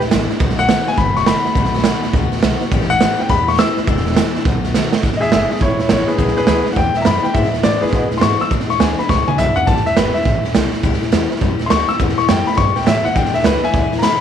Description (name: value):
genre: rockabilly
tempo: 207 BPM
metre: 4/4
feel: swing 63% on 8ths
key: E mixolydian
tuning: A4 = 440 Hz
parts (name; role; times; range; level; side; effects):
- picked steel-string acoustic guitar; accompaniment; 0.0-14.2 s; E2 to F#4; -23 LUFS; left 13 dB; none
- upright bass; bass; 0.0-14.2 s; E1 to B2; -22 LUFS; left 1 dB; none
- raw garage drum kit; drums; 0.0-14.1 s; hi-hat, kick drum, snare drum, toms; -16 LUFS; right 4 dB; none
- clear upright piano; melody; 0.6-14.2 s; E4 to E6; -18 LUFS; left 3 dB; none
room: light reverb, small room ambience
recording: 1960s-style stereo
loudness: -13 LUFS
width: side -8 dB against mid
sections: 0.0-5.0 A section; 5.0-14.2 B section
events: upright piano solo 0.0-5.0; drum fill 4.7, 9.1-9.7, 14.0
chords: 0.4 B7; 2.7 A7; 3.9 E7; 4.5 B7; 5.0 E7; 9.7 A7; 13.2 E7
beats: 0.12 | 0.41 0.69 0.98 1.27 | 1.56 1.85 2.14 2.43 | 2.72 3.01 3.30 3.59 | 3.88 4.17 4.46 4.74 | 5.03 5.32 5.61 5.90 | 6.19 6.48 6.77 7.06 | 7.35 7.64 7.93 8.22 | 8.51 8.80 9.09 9.38 | 9.67 9.96 10.26 10.54 | 10.84 11.13 11.42 11.71 | 12.00 12.29 12.58 12.87 | 13.16 13.45 13.74 14.03